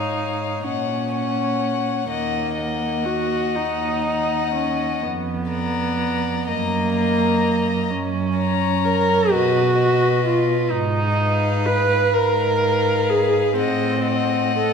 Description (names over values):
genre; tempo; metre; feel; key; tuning
classical, slow romantic movement for string quartet; 42 BPM (dotted quarters); 6/8; uneven beats, rubato; unclear; A4 = 440 Hz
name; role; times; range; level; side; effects
rich violin; melody; 0.0-14.7 s; D#5 to A#5; -27 LUFS; left 11 dB; none
warm violin; second line; 0.0-14.7 s; Cb5 to D#5; -27 LUFS; left 5 dB; none
dark viola; accompaniment; 0.0-14.7 s; A#3 to Cb5; -21 LUFS; right 1 dB; none
warm cello; bass; 0.0-14.7 s; D#2 to B2; -24 LUFS; right 3 dB; none
room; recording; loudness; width
wet scoring stage reverb, RT60 2.0 s; none; -18 LUFS; side -6 dB against mid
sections
0.0-14.7 A section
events
none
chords
0.0 C#/G#; 0.6 F#/A#; 2.1 D#m; 5.0 A#/E#; 6.5 D#m/F#; 7.9 Gb; 9.3 B; 10.7 Fm7b5/Ab; 13.6 Adim7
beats
0.63 | 2.09 3.57 | 5.03 6.49 | 7.92 9.34 | 10.72 12.14 | 13.58